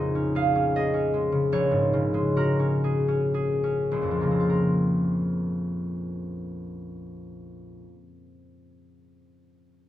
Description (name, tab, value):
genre	classical, solo harp piece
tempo	48-79 BPM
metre	3/4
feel	rubato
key	Bb minor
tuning	A4 = 440 Hz
part	concert harp	solo	0.0-8.3 s	Bb1 to F5	-23 LUFS	equal	none
room	moderate large studio reverb, RT60 1.3 s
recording	dark, warm production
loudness	-22 LUFS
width	side -13 dB against mid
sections	0.0-4.5 A section; 4.5-9.9 B section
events	slowing down 0.0-4.5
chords	0.0 Bbm11; 1.5 Ab9sus4/Bb; 4.5 Bbmadd9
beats	0.73 | 1.51 2.36 3.34 | 4.51 5.65 6.77 | 7.89